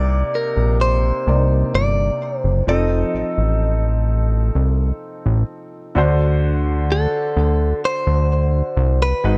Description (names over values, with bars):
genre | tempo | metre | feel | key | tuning
contemporary R&B | 64 BPM | 4/4 | straight | unclear | A4 = 440 Hz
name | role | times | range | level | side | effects
direct-recorded clean electric guitar | melody | 0.0-9.4 s | A4 to Eb5 | -24 LUFS | equal | none
warm baby grand piano | accompaniment | 0.0-9.4 s | C3 to D5 | -26 LUFS | equal | none
fat analog bass | bass | 0.0-9.4 s | F1 to D2 | -19 LUFS | equal | none
room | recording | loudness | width
studio ambience | none | -19 LUFS | mono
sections
0.0-9.4 A section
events
none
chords
0.0 Cm9; 2.7 F7; 6.0 D7